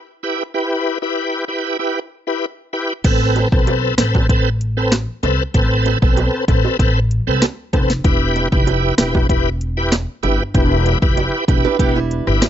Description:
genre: dancehall.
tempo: 96 BPM.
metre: 4/4.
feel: straight.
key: A minor.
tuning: A4 = 440 Hz.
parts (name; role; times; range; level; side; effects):
bright tonewheel organ; accompaniment; 0.2-12.5 s; C4 to B4; -19 LUFS; equal; chorus vibrato, slow rotary speaker.
upright bass; bass; 3.0-12.4 s; E1 to C2; -18 LUFS; equal; none.
afro-pop drum kit; drums; 3.0-12.5 s; crash cymbal, hi-hat, kick drum, rim click, snare drum; -16 LUFS; equal; none.
bongos; percussion; 3.4-12.5 s; none; -26 LUFS; right 9 dB; none.
nylon-string guitar; arpeggios; 11.6-12.5 s; G3 to B4; -20 LUFS; right 8 dB; ping-pong delay.
room: little or no reverb.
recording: nothing above 7.8 kHz.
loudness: -15 LUFS.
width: side -10 dB against mid.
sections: 0.0-3.0 A section; 3.0-12.5 B section.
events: none.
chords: 0.0 Em; 3.0 Amadd9; 8.0 Em.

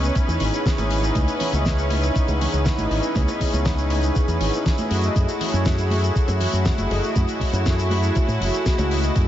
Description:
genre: nu-disco, nu disco.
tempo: 120 BPM.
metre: 4/4.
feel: straight.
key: C# minor.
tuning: A4 = 439 Hz.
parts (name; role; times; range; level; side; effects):
warm analog pad; accompaniment; 0.0-9.3 s; A3 to D#5; -25 LUFS; equal; chorus, sidechain pumping, tape echo.
bright symphonic string section; sustained chords; 0.0-9.3 s; C#4 to B4; -28 LUFS; equal; sidechain pumping.
fingered electric bass with an envelope filter; bass; 0.0-9.2 s; F#1 to A2; -22 LUFS; equal; tube saturation.
damped 70s drum kit; drums; 0.0-9.3 s; hi-hat, shaker, snare drum; -30 LUFS; left 2 dB; studio reverb.
electronic kick drum; drums; 0.2-9.3 s; none; -22 LUFS; equal; studio reverb.
bongos and congas; percussion; 0.2-9.3 s; none; -32 LUFS; right 2 dB; none.
room: light reverb, small room ambience.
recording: nothing above 7.6 kHz.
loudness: -19 LUFS.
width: side -12 dB against mid.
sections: 0.0-9.3 A section.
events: none.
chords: 0.0 C#m7; 4.9 F#m7.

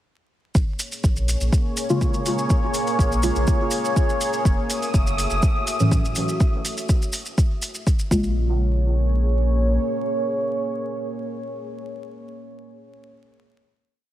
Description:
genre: dub techno.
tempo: 123 BPM.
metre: 4/4.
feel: straight.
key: unclear.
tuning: A4 = 440 Hz.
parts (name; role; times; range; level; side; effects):
electronic kick drum; drums; 0.5-8.2 s; none; -20 LUFS; equal; overdrive.
deep dark ambient pad; sustained chords; 1.2-11.2 s; A3 to Fb5; -26 LUFS; equal; chorus, built-in reverb, sidechain pumping.
round analog bass; bass; 0.6-9.8 s; Gb1 to Bb1; -21 LUFS; equal; sidechain pumping.
maracas; percussion; 0.6-8.3 s; none; -32 LUFS; equal; none.
electronic hi-hat; drums; 0.8-7.7 s; none; -34 LUFS; right 1 dB; overdrive.
deep mellow chord stab; stabs; 1.9-11.2 s; A2 to F4; -25 LUFS; equal; chorus, phaser, sidechain pumping, dub echo.
wind-like tuned noise texture; texture; 4.5-6.4 s; Eb6; -30 LUFS; equal; built-in reverb, sidechain pumping.
room: moderate lush hall reverb, RT60 1.8 s, digital ambience.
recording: dreamy mix soaked in reverb, vinyl crackle.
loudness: -19 LUFS.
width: side -13 dB against mid.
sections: 0.6-8.4 groove; 8.4-12.3 final hit.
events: none.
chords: 0.6 Bbm7; 4.5 Gbm7; 8.1 Bbm7.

